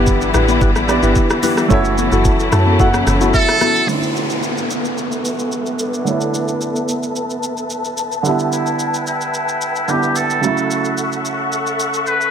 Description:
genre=amapiano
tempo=110 BPM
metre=4/4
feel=straight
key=B minor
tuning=A4 = 440 Hz
part: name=warm grand piano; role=accompaniment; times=0.0-12.3 s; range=C#3 to A5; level=-21 LUFS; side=right 4 dB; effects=low-pass filter
part: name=clear symphonic string section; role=sustained chords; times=0.0-12.3 s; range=C#3 to C#6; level=-21 LUFS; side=left 2 dB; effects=sidechain pumping, low-pass filter
part: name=percussive organ stab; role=stabs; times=0.0-3.9 s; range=E4 to B4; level=-20 LUFS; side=left 3 dB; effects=chorus, digital delay
part: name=deep log drum bass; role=bass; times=0.0-3.3 s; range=F#1 to F#2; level=-18 LUFS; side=equal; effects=none
part: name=smooth R&B drum kit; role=drums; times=0.1-12.3 s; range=hi-hat, kick drum, rim click, shaker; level=-21 LUFS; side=equal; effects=none
part: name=congas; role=percussion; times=0.3-3.7 s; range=none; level=-24 LUFS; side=left 8 dB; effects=none
part: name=trumpet with metal mute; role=melody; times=3.3-12.3 s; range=D4 to B4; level=-21 LUFS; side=right 1 dB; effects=low-pass filter, digital delay
part: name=downlifter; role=sound effects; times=3.9-8.3 s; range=none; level=-25 LUFS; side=equal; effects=none
room=light reverb, small room ambience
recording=none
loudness=-14 LUFS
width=side -8 dB against mid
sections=0.0-3.9 A section; 3.9-12.3 B section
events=drop 0.0-3.9; grand piano fill 2.3-3.9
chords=0.0 G6; 1.7 F#m7; 3.9 Bm11; 8.3 G6; 10.4 F#m7

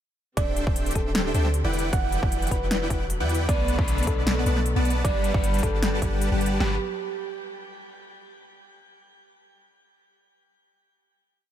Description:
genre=future bass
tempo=154 BPM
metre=4/4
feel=swing 53% on 16ths, half-time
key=G major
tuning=A4 = 439 Hz
part: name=thumb-piano-like synth pluck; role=melody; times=0.4-6.8 s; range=G4 to F#5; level=-32 LUFS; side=right 3 dB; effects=chorus, sidechain pumping, dub echo
part: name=warm symphonic string section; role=sustained chords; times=0.4-6.8 s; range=D3 to A4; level=-38 LUFS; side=equal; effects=stereo widening, sidechain pumping
part: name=dense compressed supersaw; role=riff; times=0.4-6.8 s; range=G3 to A5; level=-30 LUFS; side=equal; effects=sidechain pumping
part: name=warm 808-style bass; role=bass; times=0.4-6.8 s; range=D1 to E2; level=-26 LUFS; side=equal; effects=sidechain pumping
part: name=big-room dance drum kit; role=drums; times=0.4-6.7 s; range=kick drum, snare drum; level=-26 LUFS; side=equal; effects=overdrive
part: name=big-room dance drum kit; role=drums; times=0.4-6.5 s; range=hi-hat, snare drum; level=-30 LUFS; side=left 1 dB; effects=overdrive
part: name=electric guitar at the edge of break-up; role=accompaniment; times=3.5-6.8 s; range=B2 to F#5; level=-34 LUFS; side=left 5 dB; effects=spring reverb, sidechain pumping, tape echo
room=little or no reverb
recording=none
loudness=-22 LUFS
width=side -10 dB against mid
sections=0.4-6.6 drop; 6.6-8.2 final chord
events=drop 0.4-6.6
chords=0.4 D7sus4; 1.7 Em9; 3.5 Bm7; 5.0 Gmaj7

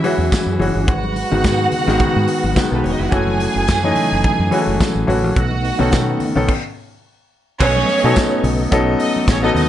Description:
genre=disco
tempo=107 BPM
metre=4/4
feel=swing 56% on 16ths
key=unclear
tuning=A4 = 440 Hz
part: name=clear studio string section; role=second line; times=0.0-9.7 s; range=A3 to G#5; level=-21 LUFS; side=right 3 dB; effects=none
part: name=warm grand piano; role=accompaniment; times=0.0-9.7 s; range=D#3 to A4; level=-18 LUFS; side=left 2 dB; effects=none
part: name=percussive tonewheel organ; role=sustained chords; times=0.0-9.7 s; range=E3 to D#5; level=-25 LUFS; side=right 4 dB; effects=chorus vibrato, fast rotary speaker
part: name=modern studio drum kit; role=drums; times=0.0-9.7 s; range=crash cymbal, hi-hat, kick drum, snare drum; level=-22 LUFS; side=equal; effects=none
part: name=congas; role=percussion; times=0.0-9.7 s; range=none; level=-29 LUFS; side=left 2 dB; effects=none
part: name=fingered electric bass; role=bass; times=0.2-9.7 s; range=E1 to B2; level=-20 LUFS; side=equal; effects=none
part: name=tambourine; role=percussion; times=0.3-9.4 s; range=none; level=-33 LUFS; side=right 11 dB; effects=none
room=light reverb, studio reverb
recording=nothing above 10.9 kHz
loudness=-14 LUFS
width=side -12 dB against mid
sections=0.0-7.6 A section; 7.6-9.7 B section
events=stop 6.5-7.6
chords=0.0 E69; 0.9 G#m7; 3.1 F#m7; 5.4 B9

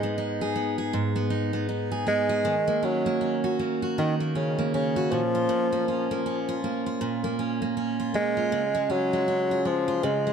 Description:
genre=pop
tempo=79 BPM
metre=4/4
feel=swing 60% on 16ths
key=Eb minor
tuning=A4 = 438 Hz
part: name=warm bassoon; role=melody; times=0.0-10.3 s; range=Db3 to Ab3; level=-26 LUFS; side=equal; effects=plate reverb, digital delay
part: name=picked steel-string acoustic guitar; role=accompaniment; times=0.0-10.3 s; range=Ab2 to Ab4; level=-26 LUFS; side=right 2 dB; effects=none
room=moderate studio reverb, RT60 0.5 s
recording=dark, warm production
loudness=-24 LUFS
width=side -7 dB against mid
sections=0.0-10.3 A section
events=none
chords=0.0 Abm; 2.5 Ebm7; 5.1 Bbm; 8.5 Db

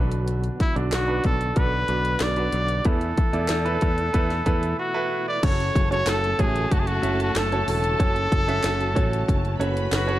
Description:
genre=piano-driven pop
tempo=93 BPM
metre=4/4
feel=straight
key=F# minor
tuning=A4 = 440 Hz
part: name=clear baby grand piano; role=accompaniment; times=0.0-10.2 s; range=B2 to E5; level=-29 LUFS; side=right 4 dB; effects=none
part: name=percussive tonewheel organ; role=sustained chords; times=0.0-10.2 s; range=B2 to F#4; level=-36 LUFS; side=left 1 dB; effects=none
part: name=modern bright picked electric bass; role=bass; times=0.0-10.2 s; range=E1 to E2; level=-26 LUFS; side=equal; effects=none
part: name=house drum kit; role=drums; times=0.1-10.2 s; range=crash cymbal, handclaps, hi-hat, kick drum, snare drum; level=-24 LUFS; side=equal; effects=none
part: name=bright trumpet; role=melody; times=0.6-10.2 s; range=E4 to D5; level=-26 LUFS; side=left 1 dB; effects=none
part: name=warm studio violin section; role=second line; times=5.4-10.2 s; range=A3 to B5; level=-33 LUFS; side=equal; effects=none
room=light reverb, digital ambience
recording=dark, warm production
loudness=-20 LUFS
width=side -14 dB against mid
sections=0.0-5.4 A section; 5.4-10.2 B section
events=break 4.8-5.4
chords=0.0 Bm; 2.9 Esus4; 5.4 F#m

